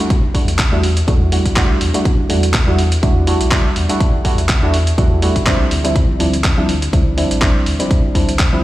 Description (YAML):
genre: deep house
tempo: 123 BPM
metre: 4/4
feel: swing 55% on 16ths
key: E minor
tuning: A4 = 440 Hz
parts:
  - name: deep mellow chord stab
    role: stabs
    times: 0.0-8.6 s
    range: F3 to F#4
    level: -18 LUFS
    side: right 1 dB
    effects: chorus, sidechain pumping, tape echo
  - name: dusty soul sampler-style drum kit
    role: drums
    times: 0.1-8.5 s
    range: handclaps, hi-hat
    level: -21 LUFS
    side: equal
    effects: none
  - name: electronic kick drum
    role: drums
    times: 0.1-8.5 s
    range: none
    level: -15 LUFS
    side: equal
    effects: none
  - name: sub bass with octave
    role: bass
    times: 0.3-8.6 s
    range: A1 to E2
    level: -18 LUFS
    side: equal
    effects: tube saturation, sidechain pumping
room: light reverb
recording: played on a big sound system in a bare room, large studio reverb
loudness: -12 LUFS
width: side -16 dB against mid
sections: 0.0-8.6 A section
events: none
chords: 0.0 Em11; 5.7 Dm11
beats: | 0.10 0.59 1.08 1.57 | 2.05 2.54 3.03 3.52 | 4.00 4.49 4.98 5.47 | 5.96 6.44 6.93 7.42 | 7.91 8.39